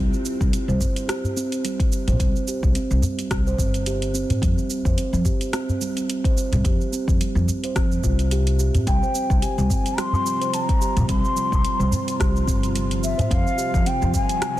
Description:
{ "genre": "organic downtempo", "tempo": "108 BPM", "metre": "4/4", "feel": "swing 56% on 16ths", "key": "unclear", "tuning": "A4 = 440 Hz", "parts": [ { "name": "steel tongue drum", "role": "arpeggios", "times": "0.0-14.6 s", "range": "G3 to C5", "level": "-27 LUFS", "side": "right 2 dB", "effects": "digital delay" }, { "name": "upright bass", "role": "bass", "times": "0.0-14.1 s", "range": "G1 to F2", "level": "-23 LUFS", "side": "equal", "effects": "sidechain pumping" }, { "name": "afro-pop drum kit", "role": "drums", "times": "0.1-14.6 s", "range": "hi-hat, rim click, shaker, toms", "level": "-30 LUFS", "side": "right 1 dB", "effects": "studio reverb, soft clipping on snare" }, { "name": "electronic kick drum", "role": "drums", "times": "0.4-14.3 s", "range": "none", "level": "-22 LUFS", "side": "equal", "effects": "studio reverb" }, { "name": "udu", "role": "percussion", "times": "0.8-14.6 s", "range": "none", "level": "-25 LUFS", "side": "equal", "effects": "none" }, { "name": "mellow hollow bansuri", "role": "melody", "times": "8.9-14.6 s", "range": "E5 to C6", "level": "-25 LUFS", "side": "left 2 dB", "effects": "digital delay" }, { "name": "ethereal airy pad", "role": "sustained chords", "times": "9.5-14.6 s", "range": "C3 to F4", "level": "-32 LUFS", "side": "equal", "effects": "ensemble chorus, built-in reverb, sidechain pumping" }, { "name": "riser", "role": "sound effects", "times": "14.2-14.6 s", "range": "none", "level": "-47 LUFS", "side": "equal", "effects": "none" } ], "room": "small room ambience", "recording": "dense, heavily limited modern master", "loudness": "-19 LUFS", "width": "side -14 dB against mid", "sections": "0.0-14.6 A section", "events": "none", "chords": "0.0 C5; 4.4 F5; 8.9 Csus4; 13.3 Fm", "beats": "0.53 1.09 1.64 | 2.20 2.75 3.31 3.86 | 4.42 4.97 5.53 6.09 | 6.64 7.20 7.75 8.31 | 8.86 9.42 9.97 10.53 | 11.09 11.64 12.20 12.75 | 13.31 13.86 14.42" }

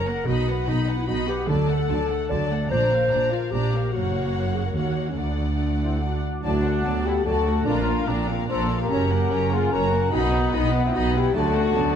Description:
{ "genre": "cinematic", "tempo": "147 BPM", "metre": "3/4", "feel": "straight", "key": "unclear", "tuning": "A4 = 440 Hz", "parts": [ { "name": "warm symphonic violin section", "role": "melody", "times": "0.0-12.0 s", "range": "F5 to B5", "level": "-33 LUFS", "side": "left 6 dB", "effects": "none" }, { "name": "dark clarinet", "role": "second line", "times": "0.0-12.0 s", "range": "A3 to D5", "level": "-27 LUFS", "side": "left 2 dB", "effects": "none" }, { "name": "rich symphonic violin section", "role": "second line", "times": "0.0-12.0 s", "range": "A4 to D#5", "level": "-35 LUFS", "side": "left 4 dB", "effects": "none" }, { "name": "rich symphonic viola section", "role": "accompaniment", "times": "0.0-12.0 s", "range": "F#3 to D#4", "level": "-32 LUFS", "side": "left 1 dB", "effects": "none" }, { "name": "rich symphonic double bass section", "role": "bass", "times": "0.0-12.0 s", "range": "F#1 to Eb2", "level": "-26 LUFS", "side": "right 2 dB", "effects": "none" }, { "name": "warm symphonic cello section", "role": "bass", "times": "0.0-12.0 s", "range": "D2 to D3", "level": "-28 LUFS", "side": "right 3 dB", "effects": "none" }, { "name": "mellow hollow concert flute", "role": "second line", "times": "5.8-11.9 s", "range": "D#5 to C6", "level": "-32 LUFS", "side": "left 3 dB", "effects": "none" }, { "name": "mellow French horn section", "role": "sustained chords", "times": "5.8-12.0 s", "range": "D#4 to C5", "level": "-26 LUFS", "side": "left 4 dB", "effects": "none" }, { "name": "bright trumpet section", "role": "stabs", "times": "5.8-12.0 s", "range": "B3 to A4", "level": "-31 LUFS", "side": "equal", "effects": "none" }, { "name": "clear trombone section", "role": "sustained chords", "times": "6.4-12.0 s", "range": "F2 to D#4", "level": "-33 LUFS", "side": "right 4 dB", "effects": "none" } ], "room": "moderate scoring stage reverb, RT60 2.1 s", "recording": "dark, warm production", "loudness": "-20 LUFS", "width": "side -8 dB against mid", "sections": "0.0-6.4 A section; 6.4-12.0 A section", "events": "none", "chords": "0.3 B; 1.5 D; 2.7 Bb; 3.9 F#; 5.2 D; 7.7 Bb; 8.9 F#; 10.1 B; 11.4 D", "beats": "| 0.28 0.69 1.09 | 1.50 1.90 2.31 | 2.72 3.13 3.54 | 3.94 4.35 4.77 | 5.18 5.60 6.02 | 6.44 6.85 7.26 | 7.67 8.08 8.49 | 8.90 9.31 9.72 | 10.13 10.54 10.95 | 11.35 11.76" }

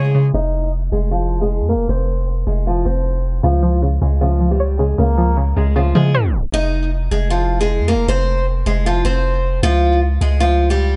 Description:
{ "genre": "hip hop, trap", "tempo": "155 BPM", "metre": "4/4", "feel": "half-time", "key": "F minor", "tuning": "A4 = 439 Hz", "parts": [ { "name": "picked steel-string acoustic guitar", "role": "melody", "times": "0.0-11.0 s", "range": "F3 to Eb5", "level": "-22 LUFS", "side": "equal", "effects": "tape echo" }, { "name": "string-like resonator pluck", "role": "accompaniment", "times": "0.0-0.3, 3.4-6.5 s", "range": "Db3 to Db5", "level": "-22 LUFS", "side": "equal", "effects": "chorus" }, { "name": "long sustained 808-style bass", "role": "bass", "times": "0.0-11.0 s", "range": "F1 to Db3", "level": "-19 LUFS", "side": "equal", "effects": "none" } ], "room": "small room reverb", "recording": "low-pass filter, tape stop, nothing above 11.0 kHz", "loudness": "-17 LUFS", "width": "mono", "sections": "0.3-6.5 A section; 6.5-11.0 B section", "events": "filter sweep 0.3-6.5; tape stop 6.1-6.5", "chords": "0.3 Fm7; 3.4 Db; 6.5 Fm7; 9.6 Db", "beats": "| 0.34 0.73 1.11 1.50 | 1.89 2.27 2.66 3.05 | 3.44 3.82 4.21 4.60 | 4.98 5.37 5.76 6.15 | 6.53 6.92 7.31 7.69 | 8.08 8.47 8.86 9.24 | 9.63 10.02 10.40 10.79" }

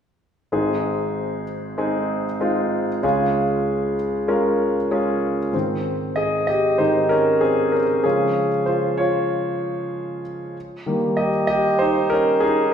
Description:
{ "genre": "pop", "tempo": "96 BPM", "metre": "4/4", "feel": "swing 56% on 16ths", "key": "Ab major", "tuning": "A4 = 440 Hz", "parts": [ { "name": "warm concert grand piano", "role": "accompaniment", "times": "0.5-12.7 s", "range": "Ab1 to Eb5", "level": "-18 LUFS", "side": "equal", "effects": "none" } ], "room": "wet recital hall reverb, RT60 1.4 s", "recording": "recorded in a church or concert hall", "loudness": "-18 LUFS", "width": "side -8 dB against mid", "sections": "0.5-5.5 A section; 5.5-12.7 B section", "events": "grand piano solo 5.5-12.7", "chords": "0.5 Ab; 3.0 Db; 5.5 Ab; 8.0 Db; 10.6 Eb", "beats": "| 0.52 1.15 1.78 2.40 | 3.03 3.66 4.29 4.91 | 5.54 6.17 6.79 7.42 | 8.04 8.67 9.30 9.93 | 10.55 11.18 11.80 12.43" }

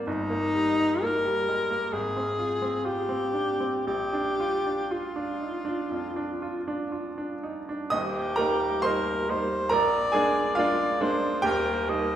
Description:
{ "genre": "classical, romantic duo for alto saxophone and grand piano", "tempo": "56-70 BPM", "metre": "4/4", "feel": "rubato", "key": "Eb major", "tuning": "A4 = 440 Hz", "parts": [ { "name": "bright baby grand piano", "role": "accompaniment", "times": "0.0-12.2 s", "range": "Eb1 to Eb6", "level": "-28 LUFS", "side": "right 2 dB", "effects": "none" }, { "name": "clear alto saxophone", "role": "melody", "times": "0.1-12.2 s", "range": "Eb4 to Eb5", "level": "-27 LUFS", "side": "left 2 dB", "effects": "none" } ], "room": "wet recital hall reverb, RT60 1.6 s", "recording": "heard from further back in the room", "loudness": "-24 LUFS", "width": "side -10 dB against mid", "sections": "0.0-7.9 A section; 7.9-12.2 B section", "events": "none", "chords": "0.1 Eb/G; 1.9 Fm/Ab; 3.9 Bb; 7.9 Eb; 9.7 Bb7; 11.4 Eb", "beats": "| 0.07 1.02 1.94 2.85 | 3.87 4.91 5.91 6.93 | 7.92 8.84 9.72 10.57 | 11.44" }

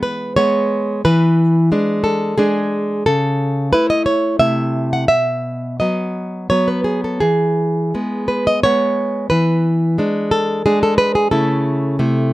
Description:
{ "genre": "romantic piece for solo classical guitar", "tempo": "88 BPM", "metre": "3/4", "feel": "rubato", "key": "E major", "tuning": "A4 = 440 Hz", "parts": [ { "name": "nylon-string guitar", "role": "solo", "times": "0.0-12.3 s", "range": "B2 to F#5", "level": "-14 LUFS", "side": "equal", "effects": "none" } ], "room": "little or no reverb", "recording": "close, detailed microphones", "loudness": "-14 LUFS", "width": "side -17 dB against mid", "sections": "0.0-12.3 A section", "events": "none", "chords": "0.0 E (rootless); 1.1 E7; 3.1 A/C#; 4.4 Am/C; 5.1 B; 7.2 E; 9.3 E7; 11.3 A/C#", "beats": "0.38 | 1.05 1.72 2.39 | 3.08 3.74 4.42 | 5.11 5.82 6.51 | 7.23 7.95 8.64 | 9.31 9.98 10.66 | 11.32 12.00" }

